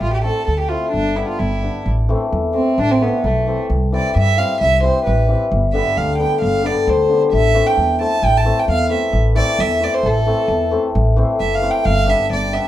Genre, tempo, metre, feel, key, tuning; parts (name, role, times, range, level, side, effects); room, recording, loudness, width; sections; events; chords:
klezmer; 132 BPM; 2/4; straight; A minor; A4 = 439 Hz
rich violin; melody; 0.0-12.7 s; A3 to A5; -19 LUFS; right 3 dB
hammered dulcimer; accompaniment; 0.0-12.7 s; D3 to E4; -19 LUFS; left 4 dB
upright bass; bass; 0.0-12.6 s; F#1 to G2; -19 LUFS; equal
moderate small room reverb, RT60 0.6 s; heard from further back in the room; -14 LUFS; side -13 dB against mid
0.0-3.7 A section; 3.7-10.9 B section; 10.9-12.7 C section
violin solo 10.9-12.7
0.0 Am; 0.9 G; 1.9 Am; 3.7 C; 5.5 G; 7.3 Am; 11.8 G